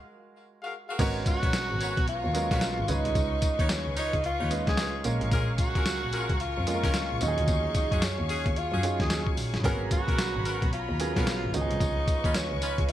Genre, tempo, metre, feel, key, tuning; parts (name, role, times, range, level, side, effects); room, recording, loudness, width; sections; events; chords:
R&B, new jack swing; 111 BPM; 4/4; swing 62% on 16ths; G# dorian; A4 = 440 Hz
warm grand piano; accompaniment; 0.0-12.9 s; E#3 to E#5; -35 LUFS; right 5 dB
clear horn section; stabs; 0.6-12.8 s; B3 to E#5; -36 LUFS; left 3 dB
warm studio string section; sustained chords; 1.0-12.9 s; B3 to C#6; -38 LUFS; left 3 dB
warm double bass; bass; 1.0-12.9 s; G1 to F#2; -31 LUFS; equal
boom bap sampler-style drum kit; drums; 1.0-12.9 s; crash cymbal, hi-hat, kick drum, snare drum, tambourine; -29 LUFS; equal
mellow tenor saxophone; melody; 1.3-12.9 s; C#4 to G#4; -32 LUFS; right 1 dB
light reverb, studio reverb; bright 1980s-style digital production; -25 LUFS; side -12 dB against mid
1.0-12.9 A section
break 0.0-1.0
0.0 F#maj9; 1.0 G#m11; 2.9 C#9; 5.0 A#m7; 7.2 D#m11; 9.6 G#m11; 11.5 C#9